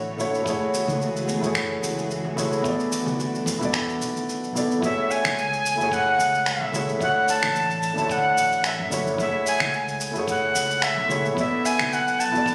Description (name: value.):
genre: sunset chillout.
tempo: 110 BPM.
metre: 4/4.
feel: swing 54% on 16ths.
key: F# minor.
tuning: A4 = 441 Hz.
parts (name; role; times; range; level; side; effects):
dark concert grand piano; accompaniment; 0.0-12.5 s; A3 to D5; -28 LUFS; equal; delay.
soft string machine; sustained chords; 0.0-4.8 s; D3 to C#5; -34 LUFS; equal; ensemble chorus.
mellow fretless electric bass; bass; 0.0-12.5 s; E1 to F#2; -36 LUFS; equal; subtle chorus.
electronic cabasa, congas and finger snaps; drums; 0.2-12.5 s; none; -31 LUFS; equal; none.
congas; percussion; 0.2-4.7 s; none; -38 LUFS; equal; none.
electronic kick drum; drums; 0.5-12.5 s; none; -37 LUFS; equal; none.
breathy bright jazz flute; melody; 4.8-12.5 s; E5 to A5; -25 LUFS; equal; delay.
room: moderate plate reverb, RT60 1.4 s.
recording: recorded on a phone in the room, studio reverb, compression.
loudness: -23 LUFS.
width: mono.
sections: 0.0-4.8 A section; 4.8-12.5 B section.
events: none.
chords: 0.5 F#m9; 2.6 E9sus4; 4.8 F#m9; 7.0 Dmaj7; 9.2 F#m9; 11.4 E9sus4.